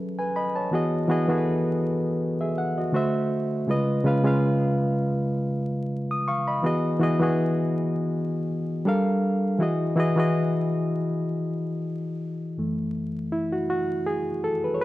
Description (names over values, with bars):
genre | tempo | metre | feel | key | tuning
R&B | 81 BPM | 4/4 | swing 54% on 16ths | unclear | A4 = 437 Hz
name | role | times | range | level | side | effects
barky reed electric piano | solo | 0.0-14.8 s | F#2 to D#6 | -23 LUFS | equal | overdrive
room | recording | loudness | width
moderate echo chamber reverb, RT60 2.0 s | dark, warm production, vinyl crackle | -23 LUFS | side -16 dB against mid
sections
0.7-12.6 A section; 12.6-14.8 B section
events
reed electric piano solo 12.6-14.8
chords
0.0 F#m9; 0.7 Emaj9; 2.9 D9; 3.7 C#9; 6.6 Emaj9; 8.9 Gm9; 9.6 Emaj9; 12.6 F#m7